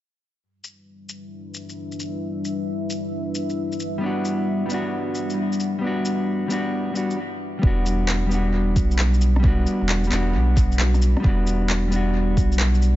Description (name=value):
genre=future garage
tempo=133 BPM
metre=4/4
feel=swing 66% on 16ths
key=E minor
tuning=A4 = 439 Hz
part: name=deep dark ambient pad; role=sustained chords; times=1.1-7.2 s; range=G3 to E5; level=-29 LUFS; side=left 1 dB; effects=chorus, built-in reverb, vintage 12-bit sampler grit, sidechain pumping
part: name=electronic shaker, handclaps and rim click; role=drums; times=0.6-12.9 s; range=none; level=-29 LUFS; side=equal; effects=overdrive, studio reverb, analog delay
part: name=mellow electric guitar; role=accompaniment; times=4.0-13.0 s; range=G3 to F#4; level=-23 LUFS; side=left 1 dB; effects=sidechain pumping, tape echo
part: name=warm sub bass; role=bass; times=7.6-13.0 s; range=E1 to B1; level=-20 LUFS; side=equal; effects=sidechain pumping
part: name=electronic kick drum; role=drums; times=7.6-12.5 s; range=none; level=-20 LUFS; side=equal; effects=overdrive, studio reverb
room=light reverb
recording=echo-heavy mix, nothing above 7.8 kHz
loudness=-20 LUFS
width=side -15 dB against mid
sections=0.4-7.6 A section; 7.6-13.0 B section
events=stop 7.2-7.6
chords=0.4 Em7